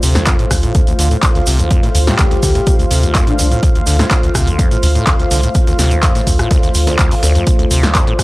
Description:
acid house; 125 BPM; 4/4; straight; D minor; A4 = 439 Hz
dark analog pad; sustained chords; 0.0-8.2 s; A3 to F5; -20 LUFS; equal; chorus, vintage 12-bit sampler grit, sidechain pumping
acid bass, saw; riff; 0.0-8.2 s; D1 to D3; -18 LUFS; equal; tube saturation
saturated sub bass; bass; 0.0-8.2 s; C2 to D2; -14 LUFS; equal; sidechain pumping
breakbeat sampler-style drum kit; drums; 0.0-8.2 s; hi-hat, snare drum; -28 LUFS; equal
punchy analog drum machine; drums; 0.0-8.2 s; handclaps, hi-hat, rim click, snare drum; -19 LUFS; equal
egg shaker; percussion; 0.0-8.2 s; -25 LUFS; right 2 dB
electronic kick drum; drums; 0.3-8.2 s; -14 LUFS; equal
breathy flute-like synth lead; melody; 2.1-3.5 s; D4 to G4; -21 LUFS; left 2 dB; analog chorus, analog delay
little or no reverb; dry, gritty hardware recording; -10 LUFS; side -20 dB against mid
0.0-8.2 A section
0.0 Dm7
0.27 0.75 1.23 | 1.71 2.19 2.67 3.15 | 3.63 4.11 4.59 5.07 | 5.55 6.03 6.51 6.99 | 7.47 7.95

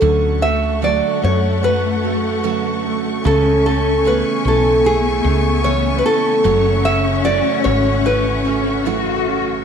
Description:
pop ballad; 75 BPM; 4/4; straight; F# minor; A4 = 439 Hz
nylon-string guitar; melody; 0.0-9.2 s; G#4 to E5; -18 LUFS; right 1 dB
dark studio cello section; second line; 0.0-9.6 s; A3 to F#4; -23 LUFS; left 10 dB
clear concert grand piano; accompaniment; 0.0-9.6 s; C#3 to F#4; -24 LUFS; right 10 dB
warm studio string section; sustained chords; 0.0-9.6 s; A3 to C#6; -25 LUFS; left 2 dB
picked steel-string acoustic guitar; arpeggios; 0.0-9.6 s; F#2 to G#4; -25 LUFS; right 11 dB
woody fretless electric bass; bass; 0.0-9.6 s; F#1 to F#2; -20 LUFS; left 1 dB; wide subtle chorus
moderate echo chamber reverb, RT60 1.9 s, small room reverb; 1960s-style stereo with parts hard left and right; -14 LUFS; side -7 dB against mid
0.0-9.6 A section
0.0 Dmaj7; 3.3 Amaj7; 6.4 F#m7
| 0.02 0.83 1.64 2.45 | 3.25 4.06 4.85 5.65 | 6.45 7.25 8.05 8.85

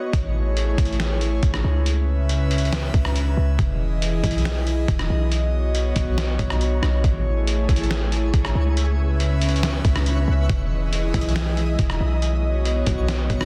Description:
hip hop, atmospheric cloud-rap; 139 BPM; 4/4; half-time; A lydian; A4 = 441 Hz
airy breathy pad; sustained chords; 0.0-13.4 s; C#3 to E5; -28 LUFS; equal; chorus, sidechain pumping
twinkling granular texture; texture; 0.0-0.1, 7.4-13.4 s; G#3 to D#5; -38 LUFS; equal; built-in reverb
warm 808-style bass; bass; 0.1-13.4 s; E1 to C#2; -24 LUFS; equal
trip hop sampler-style drum kit; drums; 0.1-13.4 s; hi-hat, kick drum, rim click, snare drum; -27 LUFS; equal; vintage 12-bit sampler grit
little or no reverb; dense, heavily limited modern master; -21 LUFS; mono
0.1-13.4 A section
0.1 Amaj7; 1.9 C#m7; 3.6 Emaj7; 5.3 Badd9; 7.0 Amaj7; 8.8 C#m7; 10.5 Emaj7; 12.2 Badd9
| 0.14 0.57 1.00 1.43 | 1.86 2.29 2.73 3.16 | 3.59 4.02 4.45 4.88 | 5.32 5.75 6.18 6.61 | 7.04 7.47 7.90 8.34 | 8.77 9.20 9.63 10.06 | 10.49 10.93 11.36 11.79 | 12.22 12.65 13.08

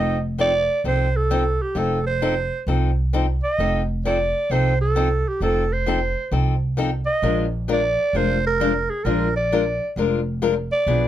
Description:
acoustic string swing (jazz manouche); 132 BPM; 4/4; swing 65% on 8ths; F mixolydian; A4 = 436 Hz
growling clarinet; melody; 0.0-11.1 s; G4 to Eb5; -22 LUFS; right 3 dB
picked old ladder-braced acoustic guitar; accompaniment; 0.0-11.1 s; B2 to B4; -24 LUFS; left 5 dB
upright bass; bass; 0.0-11.1 s; F1 to C2; -23 LUFS; right 1 dB
light reverb; faint mains hum; -19 LUFS; side -12 dB against mid
0.0-11.1 A section
0.0 F7; 7.2 Bb7
0.39 0.85 1.30 | 1.76 2.21 2.67 3.12 | 3.58 4.04 4.49 4.95 | 5.40 5.86 6.31 6.77 | 7.22 7.68 8.13 8.59 | 9.04 9.50 9.95 10.41 | 10.86

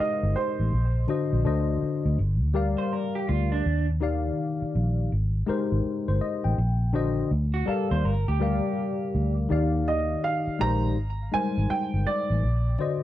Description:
R&B; 82 BPM; 4/4; swing 63% on 16ths; Eb major; A4 = 439 Hz
warm baby grand piano; melody; 0.0-1.0, 9.9-12.8 s; C5 to Bb5; -29 LUFS; right 4 dB; tape echo
tine electric piano; accompaniment; 0.0-13.0 s; D3 to G5; -28 LUFS; left 4 dB; analog chorus
vintage muted fingered electric bass; bass; 0.0-12.8 s; G1 to Eb2; -24 LUFS; equal
electric guitar through a small old amp; second line; 2.8-9.3 s; D4 to C5; -31 LUFS; right 7 dB; vibrato effect
light reverb; dark, warm production; -23 LUFS; side -13 dB against mid
0.0-13.0 A section
0.0 Abmaj9; 0.7 Bbadd9; 1.4 D7b9; 2.2 Gm7; 3.6 Ebmaj9; 5.1 Abmaj9; 6.6 Bbadd9; 7.3 Ebmaj9#11/D; 8.0 Gm7; 9.5 Ebmaj9; 11.0 Abmaj9; 12.4 Bbadd9
| 0.71 1.44 2.17 2.91 | 3.64 4.37 5.10 5.83 | 6.57 7.30 8.03 8.76 | 9.49 10.22 10.96 11.69 | 12.42

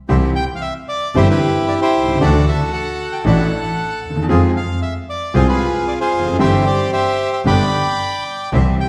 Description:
tango; 114 BPM; 4/4; rubato; C major; A4 = 440 Hz
clear upright piano; accompaniment; 0.1-8.8 s; G1 to Ab4; -22 LUFS; equal
bandoneon; stabs; 0.1-8.8 s; B3 to Ab4; -29 LUFS; equal
rich double bass; bass; 0.1-8.8 s; F1 to F2; -21 LUFS; equal
bandoneon; melody; 0.4-8.9 s; E4 to B5; -21 LUFS; equal
wet recital hall reverb, RT60 1.5 s; recorded in a church or concert hall; -17 LUFS; mono
0.1-8.9 A section
0.1 C; 2.2 Dadd9; 4.3 Fm; 6.4 C/G; 7.5 G
| 0.09 0.62 1.15 1.69 | 2.21 2.74 3.26 3.78 | 4.30 4.82 5.34 5.86 | 6.39 6.92 7.45 7.99 | 8.53

